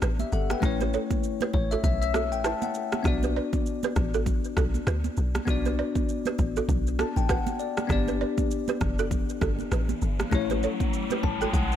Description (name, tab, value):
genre	afrobeats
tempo	99 BPM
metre	4/4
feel	swing 58% on 16ths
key	B minor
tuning	A4 = 440 Hz
part	bell-like tine electric piano	accompaniment	0.0-11.8 s	A3 to A5	-29 LUFS	left 6 dB	wide subtle chorus
part	balafon	riff	0.0-11.5 s	E4 to D5	-32 LUFS	right 8 dB	ping-pong delay
part	deep log drum bass	bass	0.0-11.8 s	F#1 to D2	-27 LUFS	equal	none
part	afro-pop drum kit	drums	0.0-11.8 s	kick drum, rim click, shaker	-29 LUFS	equal	vintage 12-bit sampler grit
part	congas	percussion	0.2-11.7 s	none	-36 LUFS	right 11 dB	none
part	riser	sound effects	9.4-11.8 s	none	-36 LUFS	right 1 dB	none
room	little or no reverb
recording	none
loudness	-24 LUFS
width	side -10 dB against mid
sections	0.0-11.8 A section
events	tine electric piano fill 1.2-3.1, 6.7-7.9, 10.9-11.8; riser 9.4-11.8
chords	0.0 G; 0.6 A; 3.1 Bm; 7.9 G; 10.3 A